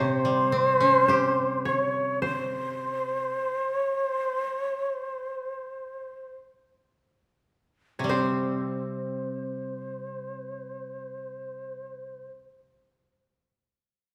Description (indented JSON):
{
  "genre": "japanese traditional, Japanese chamber music",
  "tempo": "free time",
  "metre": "none",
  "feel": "none",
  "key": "unclear",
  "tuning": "A4 = 440 Hz",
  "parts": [
    { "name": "breathy mellow shakuhachi", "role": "melody", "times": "0.0-12.3 s", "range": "C5 to Db5", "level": "-29 LUFS", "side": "equal", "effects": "none" },
    { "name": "koto", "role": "second line", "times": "0.0-12.3 s", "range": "C5 to Db5", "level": "-36 LUFS", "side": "equal", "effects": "none" },
    { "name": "koto", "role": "accompaniment", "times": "0.0-12.4 s", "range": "C3 to G4", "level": "-33 LUFS", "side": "equal", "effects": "none" }
  ],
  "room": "wet recital hall reverb, RT60 1.6 s",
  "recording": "recorded in a church or concert hall",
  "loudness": "-27 LUFS",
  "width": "mono",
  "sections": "0.0-8.1 A section; 8.1-14.1 B section",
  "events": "slowing down 0.0-8.1",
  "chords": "none"
}